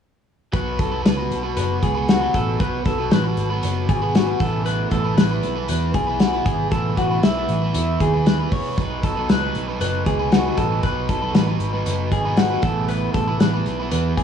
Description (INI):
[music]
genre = jangly indie pop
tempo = 117 BPM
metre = 4/4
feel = straight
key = B mixolydian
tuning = A4 = 440 Hz
[part]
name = overdriven electric guitar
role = accompaniment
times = 0.5-14.2 s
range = F#3 to B4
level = -26 LUFS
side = right 7 dB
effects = none
[part]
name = electric guitar through a small old amp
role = arpeggios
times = 0.5-14.2 s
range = E4 to C#5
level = -24 LUFS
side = left 3 dB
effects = phaser, tape echo
[part]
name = vintage muted picked electric bass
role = bass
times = 0.5-14.2 s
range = F#1 to E2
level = -24 LUFS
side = equal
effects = none
[part]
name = loose indie drum kit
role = drums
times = 0.5-14.2 s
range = hi-hat, kick drum, snare drum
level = -22 LUFS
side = left 1 dB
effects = vintage 12-bit sampler grit
[sound]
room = light reverb, small room ambience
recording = cassette tape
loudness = -18 LUFS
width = side -8 dB against mid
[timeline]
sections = 0.5-14.2 A section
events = none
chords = 0.5 B5; 4.4 Asus2; 8.8 B; 12.6 Asus2